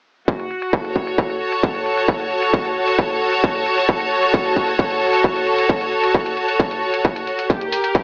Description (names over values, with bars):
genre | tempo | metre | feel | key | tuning
driving peak-time techno | 133 BPM | 4/4 | straight | F# minor | A4 = 440 Hz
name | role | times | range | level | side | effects
electronic hi-hat | drums | 0.3-8.0 s | none | -34 LUFS | equal | none
electronic kick drum | drums | 0.3-8.0 s | none | -22 LUFS | equal | distortion, overdrive, small room reverb, cassette tape
bright symphonic string section | texture | 0.3-8.0 s | F#4 to A5 | -21 LUFS | equal | sidechain pumping
room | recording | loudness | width
light reverb, studio reverb | home recording on cassette, AM radio sound | -19 LUFS | mono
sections
0.3-8.0 A section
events
none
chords
0.3 F#m; 7.5 Gm